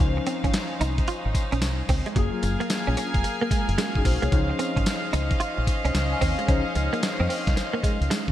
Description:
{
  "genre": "R&B, new jack swing",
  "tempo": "111 BPM",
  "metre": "4/4",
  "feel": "swing 64% on 16ths",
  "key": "Db major",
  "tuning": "A4 = 440 Hz",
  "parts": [
    { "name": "tine electric piano", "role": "accompaniment", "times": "0.0-8.3 s", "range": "F3 to Ab5", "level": "-31 LUFS", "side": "left 5 dB", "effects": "ensemble chorus" },
    { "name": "warm studio string section", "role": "sustained chords", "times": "0.0-8.3 s", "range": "Db4 to Ab5", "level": "-30 LUFS", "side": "equal", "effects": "none" },
    { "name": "deep dub fingered electric bass", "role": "bass", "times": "0.0-8.3 s", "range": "F1 to Db3", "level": "-26 LUFS", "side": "equal", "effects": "none" },
    { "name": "dusty soul sampler-style drum kit", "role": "drums", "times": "0.0-8.3 s", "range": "hi-hat, kick drum, snare drum, tambourine", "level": "-26 LUFS", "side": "equal", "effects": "gated reverb" },
    { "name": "direct-recorded clean electric guitar", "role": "riff", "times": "0.2-8.3 s", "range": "Gb3 to F4", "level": "-31 LUFS", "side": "right 4 dB", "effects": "ensemble chorus" }
  ],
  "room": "light reverb",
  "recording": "bright 1980s-style digital production",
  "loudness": "-22 LUFS",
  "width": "side -12 dB against mid",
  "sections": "0.0-8.3 A section",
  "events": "none",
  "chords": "0.0 Dbmaj9; 2.2 Gbmaj9; 4.3 Dbmaj9",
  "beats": "| 0.00 0.54 1.08 1.62 | 2.16 2.70 3.24 3.78 | 4.32 4.86 5.40 5.94 | 6.48 7.02 7.57 8.11"
}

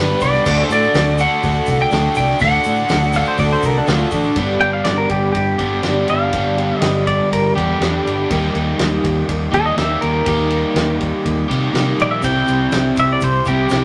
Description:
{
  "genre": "folk rock and heartland rock",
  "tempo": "122 BPM",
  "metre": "4/4",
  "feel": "straight",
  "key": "unclear",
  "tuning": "A4 = 439 Hz",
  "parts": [
    { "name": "lightly driven lead guitar", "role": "melody", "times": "0.0-3.8 s", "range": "B4 to G5", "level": "-20 LUFS", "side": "equal", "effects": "none" },
    { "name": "picked twelve-string acoustic guitar", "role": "accompaniment", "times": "0.0-13.8 s", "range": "G2 to B4", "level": "-26 LUFS", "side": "equal", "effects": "none" },
    { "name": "crunchy overdriven guitar", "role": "riff", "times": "0.0-13.8 s", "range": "G2 to B4", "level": "-23 LUFS", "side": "equal", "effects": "none" },
    { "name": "fingered electric bass", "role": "bass", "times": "0.0-13.8 s", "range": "G1 to C3", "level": "-23 LUFS", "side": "equal", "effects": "none" },
    { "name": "natural country drum kit", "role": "drums", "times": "0.2-13.8 s", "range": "crash cymbal, hi-hat, kick drum, ride cymbal, snare drum", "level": "-26 LUFS", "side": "equal", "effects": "none" },
    { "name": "tube shaker", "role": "percussion", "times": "0.2-4.3, 12.2-13.8 s", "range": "none", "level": "-44 LUFS", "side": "equal", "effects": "none" },
    { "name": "pedal steel guitar", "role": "second line", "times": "3.2-13.8 s", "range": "D4 to G5", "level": "-22 LUFS", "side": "equal", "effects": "none" }
  ],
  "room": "moderate studio reverb, RT60 0.8 s",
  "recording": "none",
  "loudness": "-17 LUFS",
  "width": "mono",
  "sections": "0.0-4.4 A section; 4.4-13.8 B section",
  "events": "pedal steel guitar solo 4.4-13.8",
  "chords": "0.5 D; 4.4 G; 8.3 Eb; 12.2 C",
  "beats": "| 0.46 0.94 1.43 1.92 | 2.41 2.90 3.39 3.88 | 4.37 4.86 5.35 5.84 | 6.33 6.82 7.32 7.81 | 8.30 8.79 9.28 9.77 | 10.27 10.76 11.25 11.74 | 12.23 12.72 13.21 13.70"
}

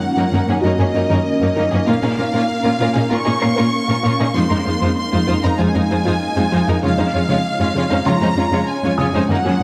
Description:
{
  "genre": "cinematic, hybrid orchestral and electronic film score",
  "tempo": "97 BPM",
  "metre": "4/4",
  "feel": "straight",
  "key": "unclear",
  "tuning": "A4 = 440 Hz",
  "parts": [
    { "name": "warm symphonic violin section", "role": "melody", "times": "0.0-9.6 s", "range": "Eb5 to Db6", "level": "-25 LUFS", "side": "equal", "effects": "none" },
    { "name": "ethereal airy pad", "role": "sustained chords", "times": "0.0-9.6 s", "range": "Ab3 to F5", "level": "-25 LUFS", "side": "equal", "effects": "ensemble chorus, built-in reverb" },
    { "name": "felt-muted upright piano", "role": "texture", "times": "0.0-9.6 s", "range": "Gb4 to C7", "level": "-31 LUFS", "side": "equal", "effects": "delay" },
    { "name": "rich studio violin section", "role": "second line", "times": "0.2-9.5 s", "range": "Db4 to Db5", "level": "-28 LUFS", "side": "equal", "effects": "none" },
    { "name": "rich symphonic viola section", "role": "accompaniment", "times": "0.2-9.5 s", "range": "Ab3 to Eb4", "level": "-26 LUFS", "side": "equal", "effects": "none" },
    { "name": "warbly dusty pluck", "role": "arpeggios", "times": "0.2-9.6 s", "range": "Db3 to Bb4", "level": "-27 LUFS", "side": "equal", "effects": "none" },
    { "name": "rich studio cello section", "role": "bass", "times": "0.2-9.6 s", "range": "F2 to Bb2", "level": "-22 LUFS", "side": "equal", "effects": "none" }
  ],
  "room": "moderate scoring stage reverb, RT60 1.9 s",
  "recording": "none",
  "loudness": "-17 LUFS",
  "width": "mono",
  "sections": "0.0-9.6 A section",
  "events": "none",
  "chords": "0.0 Ebm7/Gb; 1.9 Bbm; 4.4 Fm7; 6.8 Db/F",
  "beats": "0.02 0.64 1.26 | 1.88 2.50 3.12 3.73 | 4.35 4.97 5.59 6.21 | 6.83 7.45 8.06 8.68 | 9.30"
}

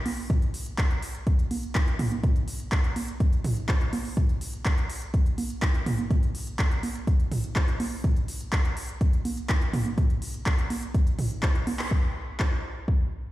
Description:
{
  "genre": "house",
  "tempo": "124 BPM",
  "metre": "4/4",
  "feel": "straight",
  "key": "none",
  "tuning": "none",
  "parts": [
    { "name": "big-room dance drum kit", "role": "drums", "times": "0.1-12.5 s", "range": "handclaps, hi-hat", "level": "-34 LUFS", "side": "equal", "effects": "none" },
    { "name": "electronic congas and toms", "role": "percussion", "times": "0.1-11.8 s", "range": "none", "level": "-32 LUFS", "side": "right 2 dB", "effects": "sidechain pumping on toms, sidechain pumping on perc" },
    { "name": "electronic kick drum", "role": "drums", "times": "0.3-13.0 s", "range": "none", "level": "-24 LUFS", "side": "equal", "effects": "none" }
  ],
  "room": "light reverb",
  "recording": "played on a big sound system in a bare room, large studio reverb",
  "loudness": "-24 LUFS",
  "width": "side -16 dB against mid",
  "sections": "0.0-11.9 A section; 11.9-13.3 B section",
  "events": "drum fill 11.4-11.9; band accent 11.8",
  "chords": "none",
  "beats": "| 0.30 0.78 1.27 1.75 | 2.23 2.72 3.20 3.69 | 4.17 4.66 5.14 5.62 | 6.11 6.59 7.07 7.56 | 8.04 8.53 9.01 9.49 | 9.98 10.46 10.95 11.43 | 11.91 12.40 12.88"
}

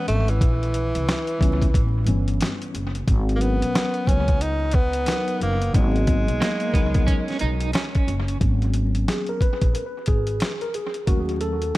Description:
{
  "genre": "hip hop, jazz-hop",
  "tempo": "90 BPM",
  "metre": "4/4",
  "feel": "swing 62% on 16ths",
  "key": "G# minor",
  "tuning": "A4 = 440 Hz",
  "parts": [
    { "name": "breathy tenor saxophone", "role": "melody", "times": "0.0-8.0 s", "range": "E3 to D#4", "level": "-27 LUFS", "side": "equal", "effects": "analog delay" },
    { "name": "mellow tine electric piano", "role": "accompaniment", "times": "0.0-11.8 s", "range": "E3 to B4", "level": "-28 LUFS", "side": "left 1 dB", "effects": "fast stereo tremolo, analog delay" },
    { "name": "upright bass", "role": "bass", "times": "0.1-11.7 s", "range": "F#1 to D#2", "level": "-23 LUFS", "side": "equal", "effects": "none" },
    { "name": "boom bap sampler-style drum kit", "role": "drums", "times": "0.1-11.8 s", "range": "hi-hat, kick drum, snare drum", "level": "-23 LUFS", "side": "equal", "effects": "none" },
    { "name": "electric guitar at the edge of break-up", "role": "second line", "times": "6.4-8.4 s", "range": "A#3 to D#4", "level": "-29 LUFS", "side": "right 4 dB", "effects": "tremolo" }
  ],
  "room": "digital ambience",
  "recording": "echo-heavy mix, vinyl crackle",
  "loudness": "-20 LUFS",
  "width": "side -18 dB against mid",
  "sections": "0.0-8.4 A section; 8.4-11.8 B section",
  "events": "tine electric piano solo 8.4-11.8",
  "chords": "0.4 A#dim; 1.7 A9; 3.1 G#m11; 11.1 D#m7b5",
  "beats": "| 0.41 1.07 1.74 2.41 | 3.08 3.74 4.41 5.08 | 5.74 6.41 7.08 7.74 | 8.41 9.07 9.74 10.41 | 11.07 11.74"
}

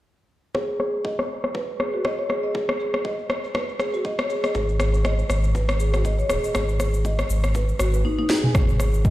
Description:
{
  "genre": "afro house",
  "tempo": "120 BPM",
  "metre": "4/4",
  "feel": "swing 56% on 16ths",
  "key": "G# minor",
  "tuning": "A4 = 439 Hz",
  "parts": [
    { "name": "marimba with soft mallets", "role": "arpeggios", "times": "0.5-9.1 s", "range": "D#4 to G#5", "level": "-27 LUFS", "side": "equal", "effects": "sidechain pumping, low-pass filter, digital delay" },
    { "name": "afro-pop drum kit", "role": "drums", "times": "0.5-9.1 s", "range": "rim click, shaker, snare drum, toms", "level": "-26 LUFS", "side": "equal", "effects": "low-pass filter on snare, low-pass filter on perc, low-pass filter on toms" },
    { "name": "electronic kick drum", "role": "drums", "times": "0.5-9.1 s", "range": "none", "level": "-25 LUFS", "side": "equal", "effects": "overdrive, high-pass filter on kick" },
    { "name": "warm sub bass", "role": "bass", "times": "4.5-9.1 s", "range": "D#1 to G#1", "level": "-22 LUFS", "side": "equal", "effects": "tube saturation, sidechain pumping" }
  ],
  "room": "light reverb",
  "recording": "played on a big sound system in a bare room, stone room reverb",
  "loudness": "-21 LUFS",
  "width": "side -16 dB against mid",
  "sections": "0.5-8.5 A section",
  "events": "filter sweep on drum 0.5-8.5; filter sweep on marimba 0.5-8.5; drum fill 8.0-8.5",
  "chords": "0.5 G#5; 8.5 N.C.",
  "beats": "| 0.55 1.05 1.55 2.05 | 2.55 3.05 3.55 4.05 | 4.55 5.05 5.55 6.05 | 6.55 7.05 7.55 8.05 | 8.55 9.05"
}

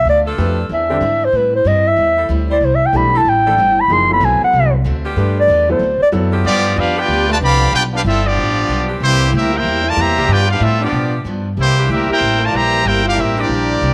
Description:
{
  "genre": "jazz, big band swing",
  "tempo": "188 BPM",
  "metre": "4/4",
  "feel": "swing 64% on 8ths",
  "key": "unclear",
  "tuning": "A4 = 441 Hz",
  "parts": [
    { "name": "breathy clarinet", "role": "melody", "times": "0.0-6.1 s", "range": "B4 to C6", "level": "-16 LUFS", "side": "equal", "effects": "none" },
    { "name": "upright bass", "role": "bass", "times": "0.0-13.9 s", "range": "F#1 to B2", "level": "-20 LUFS", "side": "equal", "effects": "none" },
    { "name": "picked steel-string acoustic guitar", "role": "accompaniment", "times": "0.1-13.9 s", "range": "G2 to B4", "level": "-29 LUFS", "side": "equal", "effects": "none" },
    { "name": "bright saxophone section", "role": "sustained chords", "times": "0.3-13.8 s", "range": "E3 to C5", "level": "-30 LUFS", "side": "equal", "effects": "none" },
    { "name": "warm grand piano", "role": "accompaniment", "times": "0.4-6.4 s", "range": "D3 to B4", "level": "-24 LUFS", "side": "equal", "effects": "none" },
    { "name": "warm trombone section", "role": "second line", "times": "6.4-13.9 s", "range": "D3 to G4", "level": "-24 LUFS", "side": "equal", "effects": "none" },
    { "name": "brilliant trumpet section", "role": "melody", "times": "6.5-13.9 s", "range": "Bb3 to B5", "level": "-18 LUFS", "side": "equal", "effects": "none" }
  ],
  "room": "light reverb, small room ambience",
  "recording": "none",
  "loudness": "-15 LUFS",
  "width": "mono",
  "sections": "0.0-6.4 A section; 6.4-13.9 B section",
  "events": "clarinet solo 0.0-6.4",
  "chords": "0.1 Bm7b5; 0.7 E7alt; 1.3 Am7; 3.9 D7; 5.2 G7; 5.8 D7; 6.4 G7; 9.0 C7; 10.3 G7; 11.6 C7",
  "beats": "| 0.06 0.38 0.70 1.02 | 1.34 1.66 1.98 2.30 | 2.62 2.94 3.25 3.57 | 3.89 4.21 4.53 4.85 | 5.17 5.49 5.81 6.13 | 6.45 6.77 7.09 7.41 | 7.73 8.05 8.37 8.69 | 9.01 9.33 9.65 9.97 | 10.29 10.61 10.93 11.25 | 11.57 11.89 12.21 12.54 | 12.86 13.18 13.50 13.82"
}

